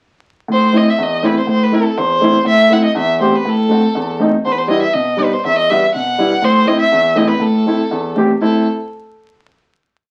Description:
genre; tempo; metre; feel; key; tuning
klezmer; 121 BPM; 2/4; straight; A dorian sharp4; A4 = 440 Hz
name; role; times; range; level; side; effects
clear violin; melody; 0.5-8.7 s; A4 to F#5; -18 LUFS; equal; none
warm upright piano; accompaniment; 0.5-8.7 s; E2 to G4; -17 LUFS; equal; none
room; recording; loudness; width
wet studio reverb, RT60 0.6 s; very old 78 rpm record, vinyl crackle; -14 LUFS; mono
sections
0.5-8.4 A section; 8.4-9.4 final chord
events
none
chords
0.5 Am; 4.5 Em; 6.4 Am

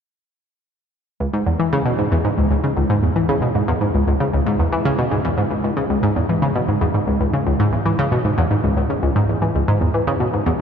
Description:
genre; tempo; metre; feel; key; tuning
ambient; 115 BPM; 4/4; straight; C# minor; A4 = 440 Hz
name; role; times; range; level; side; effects
analog pluck; solo; 1.2-10.5 s; C#2 to E3; -16 LUFS; equal; chorus, ping-pong delay
room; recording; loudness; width
wet cathedral reverb, RT60 5.2 s; in a vast, echoing space; -16 LUFS; side -7 dB against mid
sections
1.2-9.6 A section; 9.6-10.6 B section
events
none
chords
none

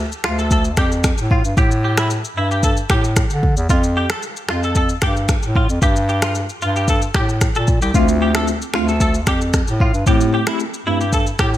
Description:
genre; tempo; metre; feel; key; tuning
afrobeats; 113 BPM; 4/4; straight; D minor; A4 = 439 Hz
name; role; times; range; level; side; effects
warm bass clarinet; bass; 0.0-11.6 s; C2 to D3; -19 LUFS; equal; none
afro-pop drum kit; drums; 0.1-11.6 s; finger snaps, kick drum, rim click, shaker; -18 LUFS; equal; gated reverb
direct-recorded clean electric guitar; melody; 0.2-11.5 s; E4 to A4; -23 LUFS; equal; ensemble chorus, digital delay
mellow tine electric piano; accompaniment; 7.9-11.0 s; A3 to G4; -21 LUFS; left 1 dB; medium stereo tremolo
room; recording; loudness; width
little or no reverb; bright 1980s-style digital production; -15 LUFS; side -13 dB against mid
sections
0.0-11.6 A section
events
none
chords
0.0 Dm; 1.6 A5; 3.7 N.C.; 7.9 Dm7; 10.1 Am7

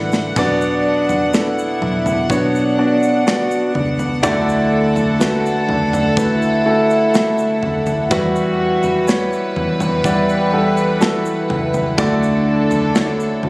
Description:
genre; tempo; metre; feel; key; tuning
pop ballad; 62 BPM; 4/4; straight; D major; A4 = 440 Hz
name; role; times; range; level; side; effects
mellow French horn section; second line; 0.0-13.5 s; D4 to G4; -20 LUFS; equal; none
warm concert grand piano; accompaniment; 0.0-13.5 s; B2 to F#5; -18 LUFS; equal; none
dark studio string section; sustained chords; 0.0-13.5 s; D3 to F#5; -21 LUFS; equal; none
vintage muted fingered electric bass; bass; 0.0-13.5 s; A1 to E2; -24 LUFS; equal; none
modern studio drum kit; drums; 0.1-13.5 s; kick drum, snare drum, splash cymbal, toms; -22 LUFS; equal; none
egg shaker; percussion; 0.1-13.4 s; none; -37 LUFS; equal; none
room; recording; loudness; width
small room ambience; recorded on a phone in the room, studio reverb, compression; -14 LUFS; side -25 dB against mid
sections
0.0-13.5 A section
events
drum fill 0.0-0.4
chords
0.4 Bm; 4.2 Dadd9; 8.1 Emadd9; 12.0 Dadd9

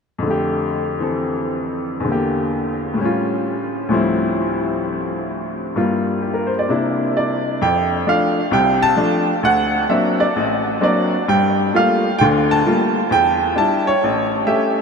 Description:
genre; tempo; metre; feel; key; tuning
solo jazz; 131 BPM; 4/4; swing 68% on 8ths; F major; A4 = 440 Hz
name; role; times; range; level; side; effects
bright upright piano; solo; 0.2-14.8 s; A1 to A5; -16 LUFS; equal; analog delay
room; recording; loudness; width
wet huge ambient reverb, RT60 8.5 s; dreamy mix soaked in reverb; -16 LUFS; side -5 dB against mid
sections
0.2-7.6 A section; 7.6-14.8 B section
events
none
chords
0.2 F69; 2.1 Em7b5; 3.0 A7b13; 3.9 Dm11; 5.8 Gm7; 6.7 C9; 7.6 F6; 9.4 D7b13; 11.3 Gm9; 13.1 Em7; 14.0 A7

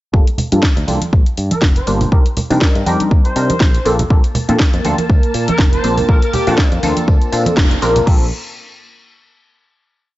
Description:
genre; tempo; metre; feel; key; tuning
filtered disco house; 121 BPM; 4/4; swing 55% on 16ths; Bb major; A4 = 439 Hz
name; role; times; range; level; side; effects
funky polysynth comp; accompaniment; 0.1-8.3 s; G3 to C5; -18 LUFS; equal; chorus, phaser, vintage 12-bit sampler grit, sidechain pumping, low-pass filter
modern bright fingered electric bass; bass; 0.1-8.3 s; F1 to C3; -19 LUFS; equal; tube saturation, sidechain pumping, low-pass filter
electronic kick drum; drums; 0.1-8.2 s; none; -12 LUFS; equal; overdrive, small room ambience
tambourine and congas; percussion; 0.1-8.1 s; none; -22 LUFS; right 2 dB; sidechain pumping on perc, low-pass filter on perc
house drum kit; drums; 0.3-8.2 s; crash cymbal, hi-hat, snare drum; -21 LUFS; equal; overdrive, sidechain pumping on hats, small room ambience, sidechain pumping on cymbals
warm horn section; melody; 1.5-6.7 s; G4 to C5; -23 LUFS; equal; vintage 12-bit sampler grit, sidechain pumping, low-pass filter
phased string machine; sustained chords; 4.3-8.1 s; Bb3 to A5; -23 LUFS; right 1 dB; ensemble chorus, phaser, sidechain pumping, low-pass filter
room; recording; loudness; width
light reverb; dry, gritty hardware recording, cassette tape, nothing above 7.8 kHz; -12 LUFS; side -16 dB against mid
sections
0.1-8.1 groove; 8.1-10.1 final chord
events
filter sweep 0.1-8.1; band accent 7.6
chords
0.1 Gm9; 2.1 Cm7; 3.9 Bbmaj9

